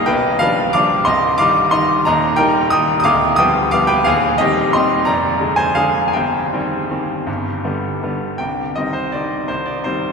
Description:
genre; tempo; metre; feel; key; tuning
classical, piano waltz; 155-193 BPM; 3/4; rubato; C minor; A4 = 440 Hz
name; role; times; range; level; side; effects
bright grand piano; solo; 0.0-10.1 s; B0 to Eb6; -14 LUFS; equal; none
room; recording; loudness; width
wet cathedral reverb, RT60 5.8 s; minimal, uncompressed stereo recording; -14 LUFS; side -5 dB against mid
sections
0.0-8.4 A section; 8.4-10.1 B section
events
none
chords
0.1 G7/B; 1.1 Cm; 2.1 Eb; 3.1 G7/D; 4.1 Cm/Eb; 5.1 Ddim/F; 6.1 Cm/G; 7.3 G; 8.4 Cm

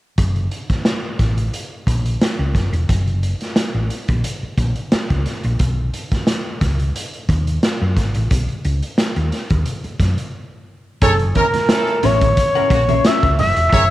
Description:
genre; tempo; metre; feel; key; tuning
funk; 89 BPM; 4/4; straight; F# mixolydian; A4 = 441 Hz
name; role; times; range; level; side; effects
hollow-body short-scale fingered electric bass; bass; 0.2-13.9 s; E1 to F#2; -18 LUFS; equal; none
raw garage drum kit; drums; 0.2-13.9 s; hi-hat, kick drum, snare drum; -19 LUFS; equal; none
expressive synth lead; melody; 11.0-13.9 s; A4 to E5; -16 LUFS; equal; chorus, slapback echo
clear horn section; second line; 11.0-13.8 s; A#3 to C#5; -22 LUFS; equal; none
congas; percussion; 11.0-13.9 s; none; -26 LUFS; right 8 dB; none
clean electric guitar; accompaniment; 12.0-13.3 s; C#4 to F#5; -23 LUFS; left 13 dB; none
room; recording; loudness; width
light reverb, small room ambience; 1960s-style stereo with parts hard left and right; -16 LUFS; side -15 dB against mid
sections
0.2-11.0 A section; 11.0-13.9 B section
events
break 10.3-11.0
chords
0.2 F#; 5.6 Badd9; 11.0 F#9

